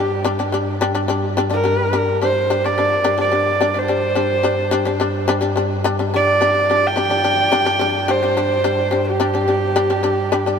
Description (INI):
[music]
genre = mongolian traditional, Mongolian folk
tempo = 107 BPM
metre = 4/4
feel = straight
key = unclear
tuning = A4 = 440 Hz
[part]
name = rich horsehead fiddle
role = melody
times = 0.0-10.6 s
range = G4 to G5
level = -18 LUFS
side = right 2 dB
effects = none
[part]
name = shamisen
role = arpeggios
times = 0.0-10.6 s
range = G3 to D4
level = -20 LUFS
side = left 4 dB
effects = none
[part]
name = dark cello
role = drone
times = 0.0-10.6 s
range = G2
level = -25 LUFS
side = right 1 dB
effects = none
[sound]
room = wet huge ambient reverb, RT60 8.9 s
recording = heard from further back in the room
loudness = -15 LUFS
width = side -6 dB against mid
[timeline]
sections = 0.0-10.6 A section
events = none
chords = 0.0 G5